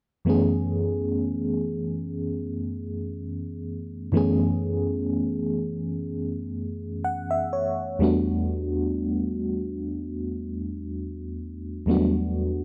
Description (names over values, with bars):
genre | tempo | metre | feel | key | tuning
R&B | 62 BPM | 4/4 | swing 54% on 16ths | F# minor | A4 = 440 Hz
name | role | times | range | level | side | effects
FM electric piano with tremolo | solo | 0.2-12.6 s | E2 to F#5 | -27 LUFS | equal | none
room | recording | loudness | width
digital ambience | dry, gritty hardware recording | -27 LUFS | mono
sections
0.3-12.6 A section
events
FM electric piano fill 6.6-8.0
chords
0.3 F#m11; 8.0 Em11